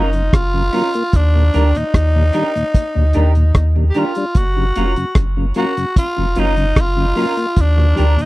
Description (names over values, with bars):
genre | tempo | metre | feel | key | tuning
roots reggae | 75 BPM | 4/4 | straight | unclear | A4 = 440 Hz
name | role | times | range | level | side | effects
growling tenor saxophone | melody | 0.0-8.3 s | D4 to G4 | -20 LUFS | equal | tape echo
mellow tonewheel organ | accompaniment | 0.0-8.3 s | Eb2 to F4 | -22 LUFS | left 1 dB | slow rotary speaker, tape echo
semi-hollow electric guitar | accompaniment | 0.0-8.1 s | Db4 to Bb4 | -24 LUFS | right 3 dB | analog chorus, tape echo
warm sub bass | bass | 0.0-8.2 s | F1 to Eb2 | -14 LUFS | equal | none
cloth-damped thuddy drum kit | drums | 0.1-8.3 s | hi-hat, kick drum, rim click | -12 LUFS | equal | none
room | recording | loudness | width
little or no reverb | dry, close 1970s-style studio recording | -13 LUFS | side -18 dB against mid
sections
0.0-8.3 A section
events
none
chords
0.0 Gbmaj7; 1.1 Ebmaj7; 4.4 Gbmaj7; 7.6 Ebmaj7